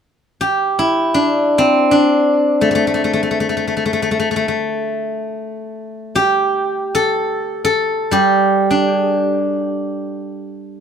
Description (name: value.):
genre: chinese traditional, Chinese solo plucked strings.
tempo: free time.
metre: none.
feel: none.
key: unclear.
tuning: A4 = 440 Hz.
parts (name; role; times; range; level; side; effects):
steel-string zither; solo; 0.4-10.8 s; G3 to A4; -15 LUFS; equal; none.
room: studio reverb.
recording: rough home demo mix.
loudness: -14 LUFS.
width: side -7 dB against mid.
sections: 0.0-10.8 A section.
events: none.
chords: none.